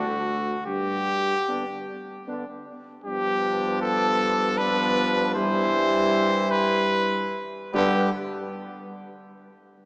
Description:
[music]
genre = classical, brass quintet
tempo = 76 BPM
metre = 3/4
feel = straight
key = G major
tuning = A4 = 440 Hz
[part]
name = warm trumpet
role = melody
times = 0.0-8.1 s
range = F#4 to C5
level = -24 LUFS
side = equal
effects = none
[part]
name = warm flugelhorn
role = second line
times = 0.0-8.1 s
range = B3 to E4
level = -33 LUFS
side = right 1 dB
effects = none
[part]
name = mellow French horn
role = accompaniment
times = 0.0-8.1 s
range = G3 to B3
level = -30 LUFS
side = equal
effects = none
[part]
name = warm trombone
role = accompaniment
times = 0.0-8.1 s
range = D3 to F3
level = -32 LUFS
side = equal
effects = none
[part]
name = mellow tuba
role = bass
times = 0.0-8.1 s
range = D2 to G2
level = -30 LUFS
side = equal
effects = none
[sound]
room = wet church reverb, RT60 3.6 s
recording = small speaker sound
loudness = -21 LUFS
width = side -28 dB against mid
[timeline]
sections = 0.0-3.1 A section; 3.1-7.7 B section; 7.7-9.9 C section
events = none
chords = 0.0 D; 0.7 G; 3.1 G7; 5.4 C/G; 7.7 G5

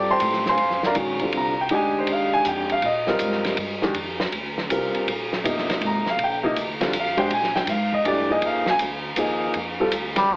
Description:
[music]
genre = modal jazz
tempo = 161 BPM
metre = 3/4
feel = swing 66% on 8ths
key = Bb mixolydian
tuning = A4 = 440 Hz
[part]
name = warm grand piano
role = accompaniment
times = 0.0-9.9 s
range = C3 to D6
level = -21 LUFS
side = equal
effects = none
[part]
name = upright bass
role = bass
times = 0.0-10.4 s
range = G1 to Bb2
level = -34 LUFS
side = equal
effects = none
[part]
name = vintage drum kit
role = drums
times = 0.2-10.2 s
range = hi-hat, kick drum, ride cymbal, snare drum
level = -26 LUFS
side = equal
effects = none
[part]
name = trombone with metal mute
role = second line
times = 10.2-10.4 s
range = F3 to G3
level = -17 LUFS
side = equal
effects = none
[sound]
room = moderate studio reverb, RT60 1.0 s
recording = heavily compressed radio sound, multiband compression, AM radio sound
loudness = -20 LUFS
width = side -25 dB against mid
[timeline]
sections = 0.6-9.6 A section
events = none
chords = 0.0 F69; 0.6 Bb9; 2.8 Fm; 5.1 Bb9; 7.3 Fm; 9.6 F69

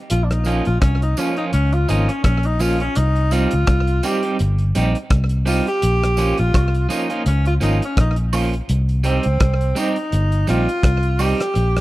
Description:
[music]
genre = roots reggae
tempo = 84 BPM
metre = 4/4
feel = swing 57% on 16ths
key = unclear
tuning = A4 = 440 Hz
[part]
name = warm tenor saxophone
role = melody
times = 0.1-11.8 s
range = C4 to G4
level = -22 LUFS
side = equal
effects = tape echo
[part]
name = vintage muted fingered electric bass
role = bass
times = 0.1-11.8 s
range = G1 to Db2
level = -18 LUFS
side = equal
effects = none
[part]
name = cloth-damped thuddy drum kit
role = drums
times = 0.1-11.8 s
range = hi-hat, kick drum, rim click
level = -21 LUFS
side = equal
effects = slapback echo
[part]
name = tambourine and woodblock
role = percussion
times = 0.4-11.4 s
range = none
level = -32 LUFS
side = right 6 dB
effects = none
[part]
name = electric guitar at the edge of break-up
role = accompaniment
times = 0.5-11.4 s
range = F3 to G4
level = -23 LUFS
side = right 3 dB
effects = tremolo, tape echo
[sound]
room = small room ambience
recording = dry, close 1970s-style studio recording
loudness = -16 LUFS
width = side -17 dB against mid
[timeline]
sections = 0.0-8.7 A section; 8.7-11.8 B section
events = tenor saxophone solo 0.0-8.7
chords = 0.1 Bbm; 3.0 Cm; 5.8 Bbm; 8.7 Cm

